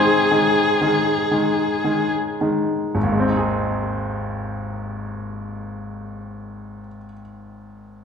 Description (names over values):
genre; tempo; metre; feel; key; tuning
classical, romantic duo for violin and grand piano; 37 BPM; 3/4; rubato; Ab major; A4 = 440 Hz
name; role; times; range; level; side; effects
warm violin; melody; 0.0-2.1 s; Ab4; -20 LUFS; left 2 dB; none
bright grand piano; accompaniment; 0.0-8.0 s; Ab1 to Db5; -22 LUFS; left 1 dB; none
room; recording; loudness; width
wet recital hall reverb, RT60 1.6 s; heard from further back in the room; -18 LUFS; side -6 dB against mid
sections
0.0-2.9 A section; 2.9-7.8 B section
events
slowing down 0.0-2.9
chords
0.0 Ab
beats
1.32 | 2.95 4.56 6.17